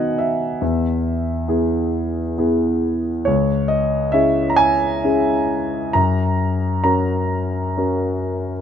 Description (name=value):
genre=classical, lyrical solo piano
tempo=67 BPM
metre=3/4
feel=rubato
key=unclear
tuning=A4 = 441 Hz
part: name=warm concert grand piano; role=solo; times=0.0-8.6 s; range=C#2 to A#5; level=-17 LUFS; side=equal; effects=none
room=light reverb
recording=close, detailed microphones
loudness=-17 LUFS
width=side -8 dB against mid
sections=0.0-8.6 A section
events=none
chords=0.0 B; 0.6 E; 3.3 C#m; 5.9 F#